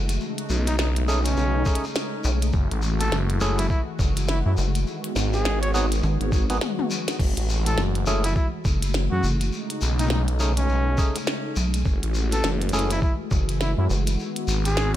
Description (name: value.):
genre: glitch hop.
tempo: 103 BPM.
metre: 4/4.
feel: swing 60% on 16ths.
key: F# dorian.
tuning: A4 = 440 Hz.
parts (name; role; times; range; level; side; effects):
warm analog pad; sustained chords; 0.0-15.0 s; C#3 to F#4; -30 LUFS; left 1 dB; chorus, sidechain pumping.
rubbery square bass; bass; 0.0-14.2 s; F#1 to B1; -23 LUFS; equal; none.
glitchy drum kit; drums; 0.1-15.0 s; crash cymbal, hi-hat, snare drum, toms; -29 LUFS; left 1 dB; studio reverb.
shekere; percussion; 0.1-14.9 s; none; -35 LUFS; left 3 dB; none.
phased detuned saw bass; bass; 0.5-15.0 s; F#1 to F#2; -23 LUFS; equal; phaser, tube saturation.
mellow trumpet; melody; 0.7-14.9 s; C#4 to C#5; -31 LUFS; equal; digital delay.
clav; stabs; 1.1-12.9 s; A3 to G#4; -30 LUFS; right 1 dB; sidechain pumping, digital delay.
electronic kick drum; drums; 1.7-13.5 s; none; -22 LUFS; equal; overdrive, studio reverb.
room: digital ambience.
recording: none.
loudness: -21 LUFS.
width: side -12 dB against mid.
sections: 0.0-15.0 A section.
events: break 6.6-7.2; drum fill 6.6-7.2.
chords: 0.2 B13; 2.5 F#m9; 4.9 G#m7; 7.2 F#m9; 9.5 B13; 11.9 F#m9; 14.2 G#m7.